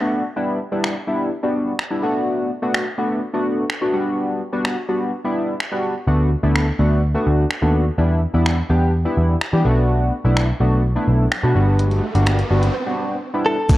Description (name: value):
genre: dance-pop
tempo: 126 BPM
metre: 4/4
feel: straight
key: unclear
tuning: A4 = 440 Hz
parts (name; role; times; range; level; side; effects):
- chorused polysynth; accompaniment; 0.0-13.8 s; G3 to G4; -20 LUFS; equal; sidechain pumping
- detuned 8-bit digital drum machine; drums; 0.8-13.8 s; crash cymbal, finger snaps, hi-hat, kick drum, shaker; -23 LUFS; equal; none
- vintage muted picked electric bass; bass; 6.1-13.8 s; G1 to E3; -17 LUFS; equal; sidechain pumping
- riser and impact; sound effects; 10.9-13.8 s; none; -29 LUFS; right 2 dB; none
- direct-recorded clean electric guitar; melody; 13.5-13.8 s; A4; -18 LUFS; equal; warbly pitch drift
- lush unison pad; sustained chords; 13.7-13.8 s; D3 to F#4; -34 LUFS; left 5 dB; none
room: light reverb, digital ambience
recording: worn, warbling old tape, cassette tape, warbly pitch drift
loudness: -17 LUFS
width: side -16 dB against mid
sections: 0.0-13.7 A section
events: riser 10.9-13.7; break 12.7-13.7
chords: 0.4 Em7; 2.0 Bm7; 3.9 Gmaj7; 6.1 D6; 8.0 Em7; 9.6 Bm7; 11.6 Gmaj7